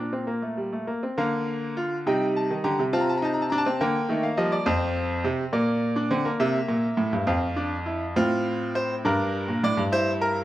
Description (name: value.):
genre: classical, baroque-style 4-part fugue for grand piano.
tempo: 68 BPM (dotted quarters).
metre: 6/8.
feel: straight.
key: Bb major.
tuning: A4 = 440 Hz.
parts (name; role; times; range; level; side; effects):
bright concert grand piano; solo; 0.0-10.4 s; F2 to Bb5; -23 LUFS; equal; none.
room: moderate recital hall reverb, RT60 1.5 s.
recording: close, detailed microphones.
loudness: -23 LUFS.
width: side -14 dB against mid.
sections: 0.0-1.2 A section; 1.2-8.2 B section; 8.2-10.4 C section.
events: none.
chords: 0.0 Bb5; 1.2 Bb/D; 2.1 Cm; 2.9 F7/C; 3.8 Bb/D; 4.7 F5; 5.5 Bbadd9; 6.4 C7; 7.3 F5; 8.2 F/A; 9.0 Gm; 9.9 C7/G.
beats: 0.27 | 1.17 2.06 | 2.94 3.81 | 4.67 5.54 | 6.40 7.27 | 8.16 9.05 | 9.92.